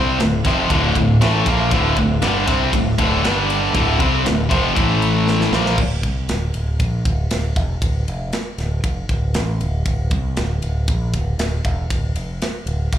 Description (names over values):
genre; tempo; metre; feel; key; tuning
heavy metal; 118 BPM; 4/4; straight; D minor; A4 = 439 Hz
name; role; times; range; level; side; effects
bright symphonic string section; sustained chords; 0.0-5.8 s; G3 to A5; -31 LUFS; right 2 dB; none
high-gain distorted guitar; riff; 0.0-5.8 s; D2 to C4; -18 LUFS; left 6 dB; distortion, slapback echo
tight distorted guitar; riff; 0.0-5.8 s; D2 to C4; -21 LUFS; right 12 dB; distortion, slapback echo
growling fingered electric bass; bass; 0.0-13.0 s; D1 to C2; -21 LUFS; equal; overdrive
tight metal drum kit; drums; 0.2-13.0 s; crash cymbal, kick drum, ride cymbal, snare drum; -23 LUFS; equal; none
room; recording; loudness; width
little or no reverb; live gig heard through the venue's PA, club reverb; -16 LUFS; side -10 dB against mid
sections
0.0-5.8 A section; 5.8-13.0 B section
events
drum fill 5.3-5.8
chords
0.0 Dm; 3.2 G5; 3.7 Dm; 4.8 A5; 5.5 Dm; 5.8 N.C.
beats
0.20 0.70 1.21 | 1.72 2.22 2.73 3.24 | 3.75 4.25 4.76 5.27 | 5.78 6.29 6.80 7.31 | 7.82 8.33 8.84 9.35 | 9.86 10.37 10.88 11.39 | 11.90 12.41 12.92